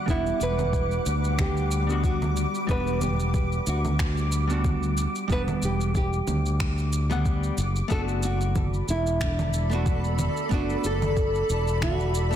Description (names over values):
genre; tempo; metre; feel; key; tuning
sunset chillout; 92 BPM; 4/4; swing 56% on 16ths; E minor; A4 = 439 Hz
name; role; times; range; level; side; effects
archtop guitar, miked and amplified; accompaniment; 0.0-12.4 s; G3 to F#5; -33 LUFS; moving between left 6 dB and right 6 dB; auto-pan, low-pass filter, digital delay
shimmering ambient pad; sustained chords; 0.0-12.4 s; G3 to D6; -32 LUFS; left 1 dB; chorus, built-in reverb
nylon-string guitar; melody; 0.1-12.4 s; D4 to B4; -30 LUFS; right 2 dB; digital delay
fingered electric bass; bass; 0.1-12.4 s; E1 to D2; -26 LUFS; equal; none
electronic kick drum; drums; 0.1-12.0 s; none; -26 LUFS; equal; overdrive, small room ambience
electronic shaker, congas and finger snaps; drums; 0.1-12.4 s; none; -33 LUFS; right 3 dB; overdrive, small room ambience, soft clipping on snare
room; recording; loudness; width
light reverb, digital ambience; dense, heavily limited modern master; -23 LUFS; side -10 dB against mid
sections
0.0-12.4 A section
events
filter sweep on hollow-body jazz guitar 0.0-12.4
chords
0.0 Em9; 7.6 Bm7